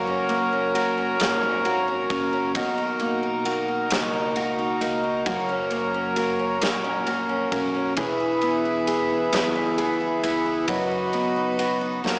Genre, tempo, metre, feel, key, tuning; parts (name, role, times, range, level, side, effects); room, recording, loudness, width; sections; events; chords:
six-eight pop ballad; 44 BPM (dotted quarters); 6/8; straight; B major; A4 = 440 Hz
mellow electric guitar; accompaniment; 0.0-12.2 s; F#2 to G#4; -28 LUFS; equal; harmonic tremolo, cassette tape
pedal harmonium; sustained chords; 0.0-12.2 s; F#4 to B5; -24 LUFS; equal; cassette tape
picked steel-string acoustic guitar; arpeggios; 0.0-12.2 s; D#3 to G#4; -29 LUFS; equal; cassette tape
upright bass; bass; 0.0-12.2 s; E1 to C#2; -40 LUFS; equal
huge arena drum kit; drums; 0.3-12.2 s; kick drum, ride cymbal, snare drum; -30 LUFS; equal; cassette tape
wet spring reverb, RT60 2.5 s; home recording on cassette, small speaker sound; -21 LUFS; side -37 dB against mid
0.0-12.2 A section
0.0 F#; 2.5 Bmaj7; 5.3 F#; 8.0 E; 10.7 B/F#